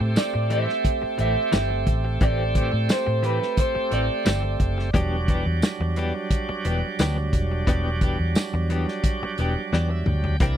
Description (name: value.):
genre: straight-eighth soul blues.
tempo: 88 BPM.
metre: 4/4.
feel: straight.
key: E minor.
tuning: A4 = 440 Hz.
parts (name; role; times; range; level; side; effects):
bright tonewheel organ; accompaniment; 0.0-10.6 s; F#3 to G5; -29 LUFS; right 4 dB; slow rotary speaker, overdrive.
direct-recorded clean electric guitar; stabs; 0.0-10.6 s; E3 to G4; -29 LUFS; left 4 dB; tremolo.
vintage muted fingered electric bass; bass; 0.0-10.6 s; E1 to A2; -24 LUFS; equal; none.
electric guitar through a small old amp; melody; 0.2-5.3 s; B4 to E5; -26 LUFS; right 2 dB; none.
warm soul drum kit; drums; 0.2-10.6 s; hi-hat, kick drum, snare drum, tambourine, toms; -23 LUFS; equal; none.
room: little or no reverb.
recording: dry, close 1970s-style studio recording.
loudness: -21 LUFS.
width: side -10 dB against mid.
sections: 0.0-10.6 A section.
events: tonewheel organ fill 9.4-10.4; drum fill 9.7-10.4.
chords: 0.0 Am7; 4.9 Em7.